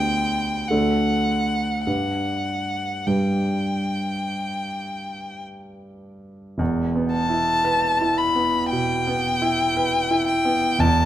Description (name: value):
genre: classical, romantic duo for violin and grand piano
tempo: 49-58 BPM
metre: 4/4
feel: rubato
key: G major, E minor from 6.6 s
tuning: A4 = 440 Hz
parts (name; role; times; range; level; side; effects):
- rich violin; melody; 0.0-11.1 s; F#5 to B5; -23 LUFS; left 2 dB; none
- warm grand piano; accompaniment; 0.0-11.1 s; E1 to B4; -23 LUFS; right 1 dB; none
room: moderate recital hall reverb, RT60 1.6 s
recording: close, detailed microphones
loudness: -20 LUFS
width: side -12 dB against mid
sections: 0.0-6.6 A section; 6.6-11.1 B section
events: none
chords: 0.0 G/D; 0.7 D; 1.9 G; 6.6 Em